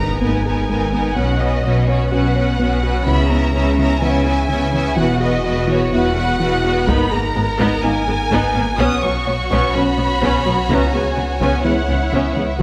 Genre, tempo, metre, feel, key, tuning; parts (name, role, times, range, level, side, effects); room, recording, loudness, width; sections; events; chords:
cinematic, hybrid orchestral and electronic film score; 126 BPM; 4/4; straight; A4 = 437 Hz
dark symphonic violin section; melody; 0.0-12.6 s; C#5 to D#6; -25 LUFS; equal
rich studio violin section; second line; 0.0-12.6 s; E4 to E5; -27 LUFS; equal
warm symphonic viola section; accompaniment; 0.0-12.6 s; F#3 to F#4; -24 LUFS; equal
soft round pluck; arpeggios; 0.0-12.6 s; C#3 to C#5; -29 LUFS; equal
pure sine sub bass; bass; 0.0-12.6 s; E1 to C#2; -26 LUFS; equal
rich symphonic cello section; bass; 0.0-12.6 s; E2 to C#3; -26 LUFS; equal
warm symphonic double bass section; bass; 0.0-12.6 s; E1 to C#2; -26 LUFS; equal
impact; sound effects; 0.0-1.2 s; -36 LUFS; equal
dark French horn section; sustained chords; 0.2-12.6 s; A#3 to F#4; -28 LUFS; equal
taiko ensemble; drums; 3.1-4.0, 6.9-12.6 s; -28 LUFS; equal
wet scoring stage reverb, RT60 1.9 s; -17 LUFS; mono
0.0-12.6 A section
impact 0.0-1.2
0.0 G#madd9; 1.2 Bsus2; 3.1 C#m7; 5.0 Esus2; 6.9 G#madd9; 8.8 Bsus2; 10.7 C#m7